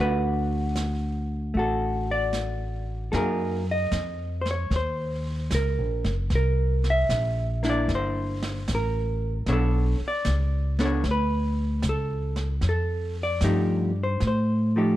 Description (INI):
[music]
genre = jazz ballad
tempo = 76 BPM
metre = 4/4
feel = swing 68% on 8ths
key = unclear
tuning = A4 = 438 Hz
[part]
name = vintage hollow-body jazz guitar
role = accompaniment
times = 0.0-15.0 s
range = D3 to E5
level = -27 LUFS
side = equal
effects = none
[part]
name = upright bass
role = bass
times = 0.0-15.0 s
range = F#1 to A2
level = -25 LUFS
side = equal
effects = none
[part]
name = jazz brush drum kit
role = drums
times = 0.8-15.0 s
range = brushed snare drum, hi-hat, snare drum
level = -37 LUFS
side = right 2 dB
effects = none
[sound]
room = little or no reverb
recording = dark, warm production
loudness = -23 LUFS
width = side -14 dB against mid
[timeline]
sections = 0.0-3.1 A section; 3.1-15.0 B section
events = none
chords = 0.0 D; 3.1 F#69; 6.3 C9; 9.5 Bm9; 12.6 F9